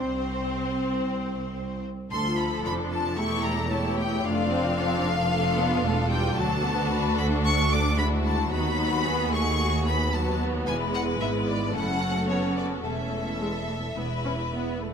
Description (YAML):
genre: quick classical-period movement for string orchestra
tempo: 112 BPM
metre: 4/4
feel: straight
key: unclear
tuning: A4 = 440 Hz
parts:
  - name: clear studio violin section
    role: melody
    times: 0.0-14.8 s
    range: C5 to D6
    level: -30 LUFS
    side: left 3 dB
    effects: none
  - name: clear studio violin section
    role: second line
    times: 0.0-14.9 s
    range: C4 to D5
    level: -31 LUFS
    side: left 3 dB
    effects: none
  - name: rich studio viola section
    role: accompaniment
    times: 0.0-14.9 s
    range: F3 to F4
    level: -30 LUFS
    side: equal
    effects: none
  - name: rich studio cello section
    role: bass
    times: 0.0-14.9 s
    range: C2 to G#2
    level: -31 LUFS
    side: right 2 dB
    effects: none
  - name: rich studio double bass section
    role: bass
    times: 0.0-14.9 s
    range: E1 to D#2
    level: -30 LUFS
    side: right 1 dB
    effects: none
room: moderate scoring stage reverb, RT60 1.8 s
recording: none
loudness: -24 LUFS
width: side -7 dB against mid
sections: 0.0-14.9 A section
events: none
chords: 0.0 N.C.; 2.1 Dm; 3.2 A7/E; 4.2 Dm/F; 6.4 D; 8.5 B7/D#; 10.7 E; 11.7 F#m7; 12.8 A/E; 14.0 E5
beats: 0.52 1.05 1.59 | 2.12 2.65 3.18 3.71 | 4.25 4.78 5.31 5.84 | 6.37 6.90 7.44 7.98 | 8.51 9.05 9.58 10.12 | 10.66 11.20 11.74 12.28 | 12.84 13.40 13.96 14.52